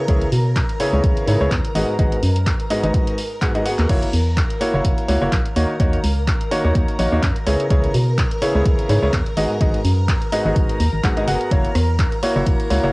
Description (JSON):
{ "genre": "piano house", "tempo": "126 BPM", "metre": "4/4", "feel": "swing 55% on 16ths", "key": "C# dorian", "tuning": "A4 = 441 Hz", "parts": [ { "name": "string machine, violins", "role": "sustained chords", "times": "0.0-12.9 s", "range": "A#4 to A#5", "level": "-29 LUFS", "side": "equal", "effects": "ensemble chorus, sidechain pumping, cassette tape" }, { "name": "bright grand piano", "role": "riff", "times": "0.1-12.9 s", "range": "G#2 to F#5", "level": "-21 LUFS", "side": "equal", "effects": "vintage 12-bit sampler grit, sidechain pumping, cassette tape, tape echo" }, { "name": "organ-like FM bass", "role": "bass", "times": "0.1-12.9 s", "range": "F#1 to B2", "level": "-19 LUFS", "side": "equal", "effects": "sidechain pumping" }, { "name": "electronic kick drum", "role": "drums", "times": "0.1-12.6 s", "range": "none", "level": "-20 LUFS", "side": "equal", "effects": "cassette tape" }, { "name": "punchy analog drum machine", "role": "drums", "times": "0.1-12.8 s", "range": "crash cymbal, handclaps, hi-hat, rim click", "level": "-29 LUFS", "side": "equal", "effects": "cassette tape" } ], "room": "light reverb", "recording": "home recording on cassette", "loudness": "-16 LUFS", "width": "side -25 dB against mid", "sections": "0.0-12.9 A section", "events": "drum fill 3.4-3.9", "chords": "0.0 C#m7; 1.8 G#m7; 3.9 F#7; 5.6 D#m7; 7.5 C#m7; 9.4 G#m7; 11.5 F#7" }